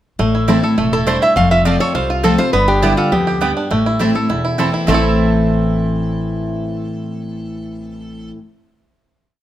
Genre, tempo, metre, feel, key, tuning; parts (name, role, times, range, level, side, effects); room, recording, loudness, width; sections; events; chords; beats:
bluegrass; 205 BPM; 4/4; straight; A minor; A4 = 442 Hz
picked steel-string acoustic guitar; accompaniment; 0.2-8.4 s; E2 to G4; -18 LUFS; left 1 dB
bluegrass banjo; arpeggios; 0.2-8.4 s; A3 to A4; -21 LUFS; right 2 dB
upright bass; bass; 0.2-8.3 s; E1 to D2; -22 LUFS; equal
mandolin; stabs; 0.5-8.4 s; B3 to A5; -24 LUFS; right 6 dB; tape echo
lap resonator guitar; melody; 0.9-8.3 s; E4 to F5; -18 LUFS; right 1 dB; plate reverb
moderate studio reverb, RT60 0.7 s; -13 LUFS; side -12 dB against mid
0.2-4.9 A section; 4.9-7.2 final chord
0.2 Am; 1.4 F; 2.5 G; 3.7 Am
| 0.19 0.48 0.78 1.07 | 1.36 1.66 1.95 2.24 | 2.54 2.83 3.12 3.42 | 3.71 4.00 4.29 4.59 | 4.88 5.17 5.47 5.76 | 6.05 6.35 6.64 6.93